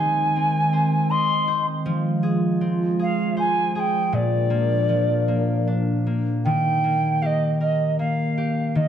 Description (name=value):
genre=children's music, lullaby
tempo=79 BPM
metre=3/4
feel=rubato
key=Eb major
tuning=A4 = 440 Hz
part: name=alto ocarina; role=melody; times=0.0-8.9 s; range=D5 to C6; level=-23 LUFS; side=right 1 dB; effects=none
part: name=concert harp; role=accompaniment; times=0.0-8.9 s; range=Bb2 to Eb5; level=-23 LUFS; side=left 1 dB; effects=none
part: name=warbly tape-like pad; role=sustained chords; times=0.0-6.4 s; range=Eb3 to Bb4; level=-26 LUFS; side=right 2 dB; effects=chorus, built-in reverb
room=moderate scoring stage reverb, RT60 1.9 s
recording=dark, warm production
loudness=-19 LUFS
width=side -9 dB against mid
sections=0.0-6.5 A section; 6.5-8.9 B section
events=none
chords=0.0 Ab/Eb; 1.8 Fm; 4.1 Bb; 6.5 Eb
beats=0.35 1.10 | 1.85 2.61 3.37 | 4.13 4.89 5.67 | 6.45 7.22 7.99 | 8.76